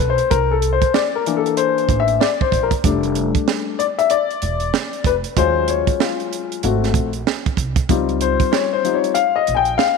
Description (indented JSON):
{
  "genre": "hip hop, jazz-hop",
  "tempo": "95 BPM",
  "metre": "4/4",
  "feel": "swing 62% on 16ths",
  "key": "unclear",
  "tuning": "A4 = 440 Hz",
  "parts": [
    { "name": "warm upright piano", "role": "accompaniment", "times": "0.0-10.0 s", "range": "E3 to Ab5", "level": "-18 LUFS", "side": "left 10 dB", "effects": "none" },
    { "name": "upright bass", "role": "bass", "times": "0.0-9.8 s", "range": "E1 to Eb2", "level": "-22 LUFS", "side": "right 2 dB", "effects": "none" },
    { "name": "compact cocktail drum kit", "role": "drums", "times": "0.0-10.0 s", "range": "hi-hat, kick drum, snare drum", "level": "-20 LUFS", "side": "right 7 dB", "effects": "none" }
  ],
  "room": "light reverb, studio ambience",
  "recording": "1960s-style stereo with parts hard left and right",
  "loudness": "-16 LUFS",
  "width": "side -4 dB against mid",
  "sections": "0.0-10.0 A section",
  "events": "upright piano solo 0.0-10.0",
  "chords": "0.3 C7; 2.8 F69; 5.4 Ebm11; 6.6 Ab7b9; 7.9 Dbmaj9#11"
}